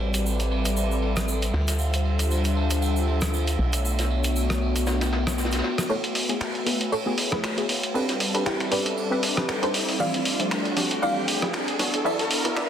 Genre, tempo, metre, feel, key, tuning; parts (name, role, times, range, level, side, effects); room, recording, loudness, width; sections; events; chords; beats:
deep house; 117 BPM; 4/4; swing 56% on 16ths; F# minor; A4 = 440 Hz
warm analog pad; sustained chords; 0.0-12.7 s; G3 to C#6; -31 LUFS; equal; chorus
hollow knocking FM bass; bass; 0.0-5.6 s; A1 to D2; -25 LUFS; equal; tube saturation
warbly tape-like pad; texture; 0.0-12.7 s; B3 to E5; -32 LUFS; left 3 dB; chorus, built-in reverb
dusty soul sampler-style drum kit; drums; 0.1-12.7 s; finger snaps, hi-hat, rim click; -28 LUFS; equal; low-pass filter on hats, soft clipping on snare, low-pass filter on snare, low-pass filter on room
vintage brush drum kit; drums; 0.1-12.7 s; hi-hat, ride cymbal, snare drum; -33 LUFS; right 3 dB; high-pass filter on hats, low-pass filter on hats, high-pass filter on cymbals, low-pass filter on cymbals, high-pass filter on snare, low-pass filter on snare, high-pass filter on room, low-pass filter on room
egg shaker; percussion; 0.1-5.9 s; -36 LUFS; right 2 dB
soft round pluck; melody; 5.9-12.7 s; E4 to F5; -30 LUFS; equal; ensemble chorus, analog delay
filtered dub chord stab; stabs; 5.9-12.7 s; E3 to D5; -29 LUFS; equal; chorus, cassette tape, analog delay
riser; sound effects; 7.8-12.7 s; -33 LUFS; equal
light reverb, small room ambience; dense, heavily limited modern master, high-pass filter; -22 LUFS; side -9 dB against mid
0.0-5.9 A section; 5.9-12.7 B section
build-up 5.9-12.7; filter sweep on synth stab 5.9-12.7; riser 7.8-12.7
0.0 Am11; 1.5 Dm11; 3.6 Bm11; 5.9 F#m11; 7.9 Am11; 9.7 Dm11; 11.8 Bm11
0.26 0.77 1.28 | 1.79 2.31 2.82 3.33 | 3.85 4.36 4.87 5.38 | 5.90 6.41 6.92 7.43 | 7.95 8.46 8.97 9.49 | 10.00 10.51 11.02 11.54 | 12.05 12.56